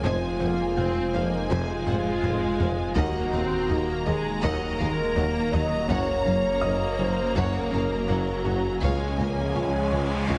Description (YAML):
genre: cinematic, hybrid orchestral and electronic film score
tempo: 82 BPM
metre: 4/4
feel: straight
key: Eb dorian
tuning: A4 = 440 Hz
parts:
  - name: warm symphonic violin section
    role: melody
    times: 0.0-10.4 s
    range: Ab5 to Bb5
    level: -39 LUFS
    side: equal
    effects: none
  - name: warm chamber violin section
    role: second line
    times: 0.0-10.4 s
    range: C5 to Ab5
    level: -39 LUFS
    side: equal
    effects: none
  - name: rich symphonic viola section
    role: accompaniment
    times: 0.0-10.4 s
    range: Gb3 to C4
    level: -36 LUFS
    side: equal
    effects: none
  - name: hollow soft pad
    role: sustained chords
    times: 0.0-10.4 s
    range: Eb3 to Eb5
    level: -38 LUFS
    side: equal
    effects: none
  - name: mellow French horn section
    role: sustained chords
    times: 0.0-10.4 s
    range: Db4 to Eb5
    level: -31 LUFS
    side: equal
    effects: none
  - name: warm trombone section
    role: sustained chords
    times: 0.0-10.4 s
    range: C3 to Bb3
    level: -40 LUFS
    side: equal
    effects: none
  - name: analog pluck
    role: arpeggios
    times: 0.0-10.4 s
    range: Db3 to Gb4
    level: -42 LUFS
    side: equal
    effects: none
  - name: round analog bass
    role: riff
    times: 0.0-10.4 s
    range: Db2 to Gb3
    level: -36 LUFS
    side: equal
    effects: none
  - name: detuned saw bass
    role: bass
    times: 0.0-10.4 s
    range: Eb1 to Db2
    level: -37 LUFS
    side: equal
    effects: none
  - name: warm chamber cello section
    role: bass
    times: 0.0-10.4 s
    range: Db2 to Gb2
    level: -36 LUFS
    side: equal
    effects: none
  - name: warm symphonic double bass section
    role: bass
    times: 0.0-10.4 s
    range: F1 to Eb2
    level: -37 LUFS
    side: equal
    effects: none
  - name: warm tuba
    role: bass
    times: 0.0-10.4 s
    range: F1 to Eb2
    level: -36 LUFS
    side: equal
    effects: none
  - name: taiko ensemble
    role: drums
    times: 0.0-10.4 s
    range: none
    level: -36 LUFS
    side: equal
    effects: none
  - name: warm concert grand piano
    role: texture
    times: 0.0-0.1, 6.6-10.4 s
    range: Eb5 to Eb6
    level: -41 LUFS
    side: equal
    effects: digital delay
  - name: riser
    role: sound effects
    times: 9.3-10.4 s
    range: none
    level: -36 LUFS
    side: equal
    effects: none
room: wet scoring stage reverb, RT60 1.8 s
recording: heavily compressed radio sound, nothing above 10.6 kHz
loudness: -25 LUFS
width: mono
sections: 0.0-10.4 A section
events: drum fill 1.9-3.0; riser 9.3-10.4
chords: 0.0 Fm; 3.0 Ebm; 5.9 Gb; 8.8 Db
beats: | 0.04 0.78 1.51 2.24 | 2.97 3.70 4.43 5.17 | 5.90 6.63 7.36 8.09 | 8.83 9.56 10.29